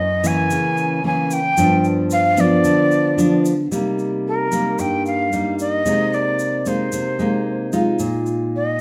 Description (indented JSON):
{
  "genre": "bossa nova",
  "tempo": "112 BPM",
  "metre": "4/4",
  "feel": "straight",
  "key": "C minor from 3.7 s",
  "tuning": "A4 = 440 Hz",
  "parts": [
    { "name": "breathy jazz flute", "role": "melody", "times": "0.0-8.8 s", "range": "Bb4 to G#5", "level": "-22 LUFS", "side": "equal", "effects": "plate reverb" },
    { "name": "nylon-string guitar", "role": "accompaniment", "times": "0.0-8.8 s", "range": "F#2 to F4", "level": "-21 LUFS", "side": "equal", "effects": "none" },
    { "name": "egg shaker", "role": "percussion", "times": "0.2-8.5 s", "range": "none", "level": "-36 LUFS", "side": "equal", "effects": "none" }
  ],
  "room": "moderate large studio reverb, RT60 0.9 s",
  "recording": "dark, warm production",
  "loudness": "-19 LUFS",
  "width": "mono",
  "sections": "0.0-3.7 A section; 3.7-8.8 B section",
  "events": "none",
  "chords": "0.0 F#7; 1.6 G7; 3.7 Cm7; 5.8 Fm7/C (rootless); 8.0 Bb7sus4",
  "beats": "0.51 1.04 | 1.57 2.11 2.64 3.18 | 3.71 4.25 4.78 5.31 | 5.85 6.38 6.92 7.45 | 7.99 8.53"
}